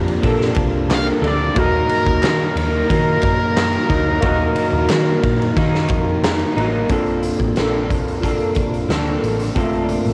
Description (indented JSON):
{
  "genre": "indie pop, bedroom pop",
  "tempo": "90 BPM",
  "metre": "4/4",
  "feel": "straight",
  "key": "Bb major",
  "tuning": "A4 = 440 Hz",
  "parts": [
    { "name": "barky tine electric piano", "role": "accompaniment", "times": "0.0-10.1 s", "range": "A3 to Bb5", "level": "-25 LUFS", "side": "equal", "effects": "cassette tape" },
    { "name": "electric guitar through a small old amp", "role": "accompaniment", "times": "0.0-10.1 s", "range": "Bb2 to A4", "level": "-24 LUFS", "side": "equal", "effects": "analog chorus, warbly pitch drift, cassette tape" },
    { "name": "hollow-body short-scale picked electric bass", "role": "bass", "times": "0.0-10.1 s", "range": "A1 to Eb3", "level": "-25 LUFS", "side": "equal", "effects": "tube saturation" },
    { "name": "raw garage drum kit", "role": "drums", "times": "0.1-10.1 s", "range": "hi-hat, kick drum, ride cymbal, snare drum", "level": "-23 LUFS", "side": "equal", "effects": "cassette tape" },
    { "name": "brilliant trumpet", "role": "melody", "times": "0.9-6.2 s", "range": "Bb4 to F5", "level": "-24 LUFS", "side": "equal", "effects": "lush chorus, cassette tape" },
    { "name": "group handclap", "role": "percussion", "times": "0.9-6.4 s", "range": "none", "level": "-31 LUFS", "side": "equal", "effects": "none" }
  ],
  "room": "light reverb",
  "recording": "home recording on cassette",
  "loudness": "-18 LUFS",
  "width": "mono",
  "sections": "0.0-6.9 A section; 6.9-10.1 B section",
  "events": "tine electric piano fill 5.9-6.9",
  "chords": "0.0 Bbmaj7; 1.6 Ebm; 6.9 Bbmaj7"
}